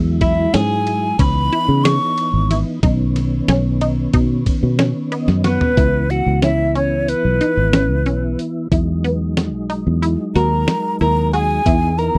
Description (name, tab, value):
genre	progressive instrumental, band music in an uneven meter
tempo	183 BPM (eighths)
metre	9/8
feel	straight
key	C# dorian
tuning	A4 = 441 Hz
part	mellow tonewheel organ	accompaniment	0.0-12.2 s	D#3 to F#5	-26 LUFS	equal	chorus vibrato, slow rotary speaker
part	fingered electric bass	bass	0.0-12.2 s	G#1 to C#3	-20 LUFS	equal	none
part	breathy mellow silver concert flute	melody	0.2-12.2 s	B4 to C#6	-22 LUFS	equal	none
part	clean electric guitar	second line	0.2-12.2 s	B3 to C#5	-27 LUFS	equal	warbly pitch drift
part	resonant blip pluck	arpeggios	0.2-12.0 s	B3 to G#4	-26 LUFS	equal	phaser
part	dusty soul sampler-style drum kit	drums	0.2-12.1 s	hi-hat, kick drum, ride cymbal, snare drum, toms	-22 LUFS	equal	none
room	light reverb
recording	dry, close 1970s-style studio recording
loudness	-17 LUFS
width	mono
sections	0.0-5.8 A section; 5.8-12.2 B section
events	tonewheel organ fill 4.8-5.8; drum fill 5.3-5.8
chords	0.0 E; 1.2 C#m9; 2.8 Badd9; 5.8 C#m7; 8.7 Emaj7; 11.7 C#m7/E (rootless)